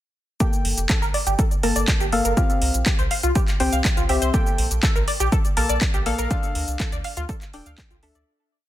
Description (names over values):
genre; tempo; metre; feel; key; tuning
progressive house; 122 BPM; 4/4; straight; G dorian; A4 = 440 Hz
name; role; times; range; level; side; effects
tight sequenced synth; arpeggios; 0.4-8.2 s; F4 to F5; -27 LUFS; equal; chorus, sidechain pumping, tape echo
deep mellow chord stab; stabs; 0.4-8.2 s; Bb3 to A5; -26 LUFS; left 3 dB; chorus, sidechain pumping, tape echo
electronic kick drum; drums; 0.4-7.9 s; none; -22 LUFS; equal; overdrive
house drum kit; drums; 0.4-8.2 s; handclaps, hi-hat, shaker; -27 LUFS; equal; overdrive, sidechain pumping on hats, sidechain pumping on perc
round analog bass; bass; 0.6-8.2 s; D1 to D2; -24 LUFS; equal; sidechain pumping
room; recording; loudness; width
little or no reverb; dense, heavily limited modern master; -19 LUFS; side -13 dB against mid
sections
0.4-8.3 drop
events
drop 0.4-8.3; fade-out 5.7-8.3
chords
0.4 Gmadd9; 2.4 Csus4; 4.3 Gmadd9/Bb; 6.3 Dm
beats
| 0.40 0.90 1.39 1.88 | 2.37 2.86 3.35 3.85 | 4.34 4.83 5.32 5.81 | 6.31 6.80 7.29 7.78